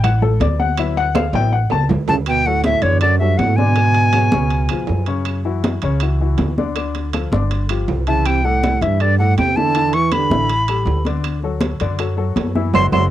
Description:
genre	Afro-Cuban jazz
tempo	160 BPM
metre	4/4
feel	straight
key	D major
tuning	A4 = 440 Hz
part	warm baby grand piano	accompaniment	0.0-13.0 s	C#3 to A5	-23 LUFS	left 8 dB	cassette tape
part	upright bass	bass	0.0-13.1 s	F#1 to G#2	-18 LUFS	equal	none
part	claves	percussion	0.0-13.0 s	none	-31 LUFS	right 13 dB	none
part	congas	percussion	0.0-13.0 s	none	-23 LUFS	equal	none
part	timbales	percussion	0.0-13.0 s	none	-29 LUFS	right 11 dB	none
part	bright silver concert flute	melody	2.1-5.1, 8.1-13.0 s	C#5 to C#6	-18 LUFS	left 2 dB	none
part	dark trombone	second line	2.1-5.1, 8.1-13.0 s	E2 to F#3	-21 LUFS	right 9 dB	cassette tape
room	light reverb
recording	home recording on cassette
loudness	-15 LUFS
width	side -13 dB against mid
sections	0.0-2.3 A section; 2.3-13.1 B section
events	grand piano solo 0.0-2.3; drum fill 1.2-2.3, 12.7-13.1; band accent 12.7-13.1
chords	0.0 D69; 2.3 D; 3.8 G#m7b5; 4.5 C#7; 5.3 F#5; 6.8 Dmadd11; 7.5 G5; 8.3 C6; 9.8 Em7; 10.5 Asus2; 11.2 Dadd9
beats	0.03 0.41 | 0.78 1.15 1.52 1.90 | 2.27 2.64 3.02 3.39 | 3.77 4.14 4.51 4.89 | 5.26 5.63 6.01 6.38 | 6.76 7.13 7.51 7.88 | 8.25 8.63 9.00 9.38 | 9.75 10.12 10.50 10.87 | 11.25 11.62 11.99 12.37 | 12.74

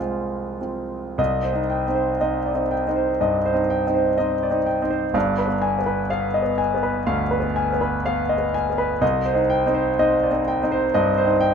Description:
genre	classical, romantic nocturne for solo piano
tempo	47-66 BPM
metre	4/4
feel	rubato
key	C minor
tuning	A4 = 438 Hz
part	clear concert grand piano	solo	0.0-11.5 s	G1 to Ab5	-19 LUFS	equal	none
room	moderate stone room reverb, RT60 1.3 s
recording	close, detailed microphones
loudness	-19 LUFS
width	side -6 dB against mid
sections	0.0-1.2 A section; 1.2-11.5 B section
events	none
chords	0.0 Fm; 1.2 Cm; 5.1 G7b9; 9.0 Cm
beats	0.00 | 1.19 2.21 3.21 4.18 | 5.15 6.11 7.08 8.06 | 9.02 9.99 10.95

